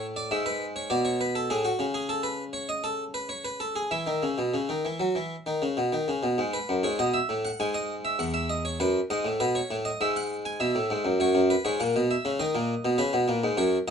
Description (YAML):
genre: classical, baroque-style two-part invention for harpsichord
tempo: 100 BPM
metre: 4/4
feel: straight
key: E major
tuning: A4 = 439 Hz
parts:
  - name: harpsichord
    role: solo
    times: 0.0-13.9 s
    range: E2 to G#5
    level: -25 LUFS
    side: equal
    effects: none
room: moderate studio reverb, RT60 0.6 s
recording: nothing above 10.8 kHz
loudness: -25 LUFS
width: side -7 dB against mid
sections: 0.0-6.4 A section; 6.4-13.9 B section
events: none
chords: 0.3 E7/G#; 1.5 F#m/A; 2.7 B; 3.9 E5; 6.4 E; 7.6 E/G#; 8.8 B7/F#; 10.0 E/G#; 11.2 B5/F#; 12.4 B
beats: 0.31 0.90 | 1.50 2.09 2.70 3.30 | 3.91 4.53 5.15 5.77 | 6.39 6.99 7.60 8.20 | 8.80 9.40 10.00 10.60 | 11.19 11.79 12.39 12.98 | 13.58